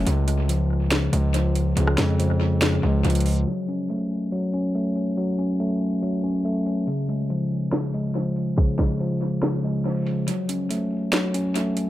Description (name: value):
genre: hip hop, trap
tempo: 141 BPM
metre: 4/4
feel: half-time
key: unclear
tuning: A4 = 441 Hz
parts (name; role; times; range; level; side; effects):
- mellow tine electric piano; accompaniment; 0.0-11.9 s; C#3 to C#4; -23 LUFS; left 1 dB; low-pass filter, tape echo
- distorted 808-style bass; bass; 0.0-3.5 s; C#2 to E#2; -22 LUFS; equal; distortion
- trap drum kit; drums; 0.1-11.9 s; hi-hat, kick drum, rim click, snare drum; -27 LUFS; equal; tape echo
room: light reverb, digital ambience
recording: echo-heavy mix, low-pass filter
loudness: -21 LUFS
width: side -14 dB against mid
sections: 0.0-3.5 A section; 3.5-10.3 B section; 10.3-11.9 C section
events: filter sweep 3.5-10.3; kick muted 9.4-10.3, 10.3-11.9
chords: 0.1 C#; 3.5 F#m; 6.9 C#; 10.3 F#m